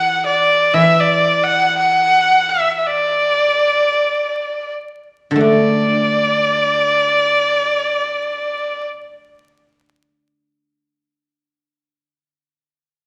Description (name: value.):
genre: chinese traditional, Chinese chamber ensemble.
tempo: 40-60 BPM.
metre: 2/4.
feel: rubato.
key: D gong mode.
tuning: A4 = 441 Hz.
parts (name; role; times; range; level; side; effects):
rich erhu; melody; 0.0-8.9 s; D5 to F#5; -16 LUFS; equal; none.
guzheng; accompaniment; 0.0-11.9 s; D3 to D4; -21 LUFS; equal; none.
room: wet recital hall reverb, RT60 1.4 s.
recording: vinyl crackle.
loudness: -16 LUFS.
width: mono.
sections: 0.0-5.4 A section; 5.4-11.2 B section.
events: slowing down 0.7-5.4.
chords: none.